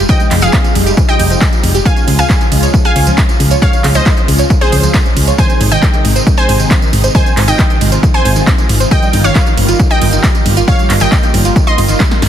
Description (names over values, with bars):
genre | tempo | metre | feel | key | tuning
uplifting trance | 136 BPM | 4/4 | straight | unclear | A4 = 441 Hz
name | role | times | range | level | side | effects
analog string pad | sustained chords | 0.0-12.3 s | C3 to F4 | -19 LUFS | equal | ensemble chorus, sidechain pumping
solid FM bass | bass | 0.0-12.3 s | F1 to Db2 | -13 LUFS | equal | sidechain pumping
wide unison pluck | melody | 0.1-12.3 s | Ab4 to C6 | -17 LUFS | equal | cassette tape, sidechain pumping, dub echo
analog pluck | arpeggios | 0.1-12.2 s | Eb3 to Db5 | -19 LUFS | right 2 dB | chorus, phaser, sidechain pumping, tape echo
big-room dance drum kit | drums | 0.1-12.3 s | handclaps, hi-hat, ride cymbal, snare drum | -18 LUFS | right 2 dB | overdrive
electronic kick drum | drums | 0.1-12.1 s | none | -12 LUFS | equal | overdrive
tambourine | percussion | 0.1-12.2 s | none | -24 LUFS | right 5 dB | none
room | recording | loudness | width
little or no reverb | dense, heavily limited modern master | -8 LUFS | side -10 dB against mid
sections
0.0-12.3 A section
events
drum fill 12.0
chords
0.0 Fmadd9; 1.9 Db; 5.4 Ab; 8.9 Ebadd9/G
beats
| 0.09 0.53 0.97 1.41 | 1.85 2.30 2.74 3.18 | 3.62 4.06 4.50 4.94 | 5.38 5.83 6.27 6.71 | 7.15 7.59 8.03 8.47 | 8.91 9.36 9.80 10.24 | 10.68 11.12 11.56 12.00